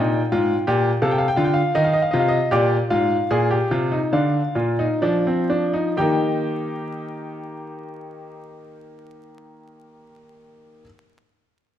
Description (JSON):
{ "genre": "classical, baroque-style 3-part fugue for grand piano", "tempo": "60-87 BPM", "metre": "4/4", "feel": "straight", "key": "Eb major", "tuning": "A4 = 440 Hz", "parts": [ { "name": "clear baby grand piano", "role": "solo", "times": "0.0-10.8 s", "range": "Ab2 to G5", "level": "-19 LUFS", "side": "equal", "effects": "none" } ], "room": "wet recital hall reverb, RT60 1.5 s", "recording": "vinyl crackle", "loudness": "-18 LUFS", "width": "side -10 dB against mid", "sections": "0.0-6.0 A section; 6.0-9.9 B section", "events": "slowing down 0.0-6.0", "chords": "0.0 Cm (rootless); 1.0 F7/C; 2.5 Bb7; 6.0 Eb" }